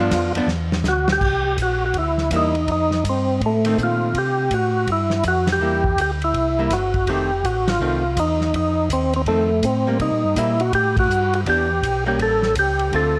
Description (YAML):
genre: soul jazz organ trio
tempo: 164 BPM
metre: 4/4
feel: swing 64% on 8ths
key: C mixolydian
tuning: A4 = 440 Hz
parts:
  - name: percussive tonewheel organ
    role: melody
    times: 0.0-13.2 s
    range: A3 to A4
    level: -22 LUFS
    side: equal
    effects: slow rotary speaker, overdrive, chorus vibrato
  - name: archtop guitar, miked and amplified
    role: accompaniment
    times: 0.0-13.1 s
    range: D3 to G4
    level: -28 LUFS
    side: equal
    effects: none
  - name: mellow tonewheel organ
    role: bass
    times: 0.0-13.2 s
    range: F1 to C3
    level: -26 LUFS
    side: equal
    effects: chorus vibrato, slow rotary speaker
  - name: warm soul drum kit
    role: drums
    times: 0.1-13.0 s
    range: crash cymbal, hi-hat, kick drum, ride cymbal, snare drum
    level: -30 LUFS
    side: equal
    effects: none
room: light reverb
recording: none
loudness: -20 LUFS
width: mono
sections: 0.0-1.2 A section; 1.2-13.2 B section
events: tonewheel organ solo 0.0-1.2; drum fill 0.5-1.2; band accent 5.4, 7.6, 10.9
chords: 0.0 G7; 1.2 C7; 2.7 F7; 4.1 C; 7.1 F7; 10.0 C7; 11.5 Em7; 12.2 A7b9